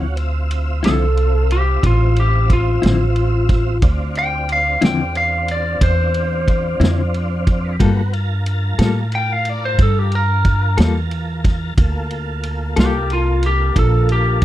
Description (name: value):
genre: slow blues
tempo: 60 BPM (dotted quarters)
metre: 12/8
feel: straight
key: D minor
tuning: A4 = 440 Hz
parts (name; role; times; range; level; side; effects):
- clean electric guitar; accompaniment; 0.0-13.0 s; D3 to A4; -19 LUFS; left 5 dB; tremolo
- tonewheel organ; sustained chords; 0.0-14.4 s; Bb3 to A5; -28 LUFS; right 1 dB; slow rotary speaker, chorus vibrato
- upright bass; bass; 0.0-14.4 s; A1 to A2; -18 LUFS; equal; none
- vintage drum kit; drums; 0.2-14.4 s; kick drum, ride cymbal, snare drum; -17 LUFS; right 1 dB; none
- lightly driven lead guitar; melody; 0.9-14.4 s; F4 to G5; -20 LUFS; left 1 dB; none
room: little or no reverb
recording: dry, close 1970s-style studio recording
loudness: -15 LUFS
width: side -14 dB against mid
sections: 0.0-14.4 A section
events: lead electric guitar solo 0.0-14.4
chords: 0.0 Dm9; 7.8 Gm9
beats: 0.84 1.83 2.83 | 3.82 4.82 5.81 6.81 | 7.80 8.79 9.79 10.78 | 11.78 12.77 13.76